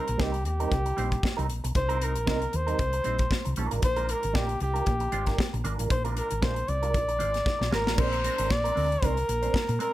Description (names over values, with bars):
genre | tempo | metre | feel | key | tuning
disco | 116 BPM | 4/4 | swing 56% on 16ths | unclear | A4 = 440 Hz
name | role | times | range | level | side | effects
warm flugelhorn | melody | 0.0-9.9 s | G4 to D5 | -29 LUFS | equal | tube saturation
mellow electric guitar | accompaniment | 0.0-9.9 s | G3 to C5 | -34 LUFS | right 5 dB | wah
hollow-body short-scale fingered electric bass | bass | 0.1-9.8 s | Ab1 to Bb2 | -30 LUFS | equal | none
modern studio drum kit | drums | 0.1-9.9 s | crash cymbal, hi-hat, kick drum, snare drum | -29 LUFS | equal | none
room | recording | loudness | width
light reverb, small room ambience | none | -24 LUFS | side -15 dB against mid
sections
0.0-8.0 A section; 8.0-9.9 B section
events
drum fill 7.5-8.0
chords
0.0 Cm7; 3.6 Bb7; 8.0 Bb9